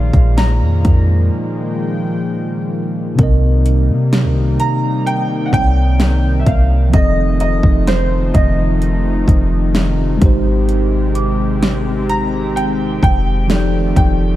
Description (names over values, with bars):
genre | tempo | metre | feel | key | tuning
contemporary R&B | 64 BPM | 4/4 | straight | C minor | A4 = 435 Hz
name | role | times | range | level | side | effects
warm grand piano | melody | 0.0-14.4 s | C5 to Bb5 | -22 LUFS | right 2 dB | lush chorus, tape echo
mellow tine electric piano | accompaniment | 0.0-14.4 s | Bb2 to Eb5 | -20 LUFS | right 1 dB | slow stereo tremolo
warm analog pad | sustained chords | 0.0-14.4 s | C3 to G5 | -20 LUFS | left 1 dB | chorus
clean 808-style bass | bass | 0.0-14.4 s | F1 to C3 | -15 LUFS | equal | none
pop drum kit | drums | 0.1-14.2 s | hi-hat, kick drum, snare drum | -15 LUFS | equal | overdrive
celesta | texture | 11.2-13.9 s | D6 | -30 LUFS | equal | wide subtle chorus, tape echo
room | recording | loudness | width
light reverb, digital ambience | none | -12 LUFS | side -14 dB against mid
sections
0.0-3.2 A section; 3.2-14.4 A section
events
break 1.3-3.2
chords
0.0 Bb7; 3.2 Cm7; 6.9 F7; 10.2 Abmaj7; 13.5 F13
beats
0.37 1.31 2.25 | 3.19 4.12 5.06 6.00 | 6.93 7.87 8.81 9.75 | 10.69 11.62 12.56 13.50